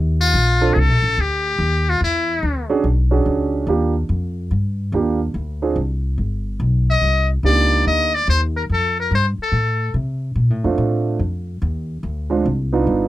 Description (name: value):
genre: jazz, small-group swing and bop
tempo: 144 BPM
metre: 4/4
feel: swing 65% on 8ths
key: Bb major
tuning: A4 = 445 Hz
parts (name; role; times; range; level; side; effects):
- upright bass; bass; 0.0-13.1 s; G1 to C3; -19 LUFS; equal; none
- trumpet with metal mute; melody; 0.2-2.7, 6.9-9.9 s; E4 to Eb5; -18 LUFS; left 2 dB; none
- warm grand piano; accompaniment; 0.6-8.1, 10.6-13.1 s; Ab3 to A4; -19 LUFS; right 4 dB; none
room: little or no reverb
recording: dry, close 1970s-style studio recording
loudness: -16 LUFS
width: side -15 dB against mid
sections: 0.3-13.1 A section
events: none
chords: 0.3 Bbmaj9; 2.0 E13; 3.7 Ebmaj9; 5.3 Dm7b5; 6.2 G; 7.0 Cm9; 8.7 Fadd9; 10.4 Bbmaj9 (rootless); 12.0 Dm7b5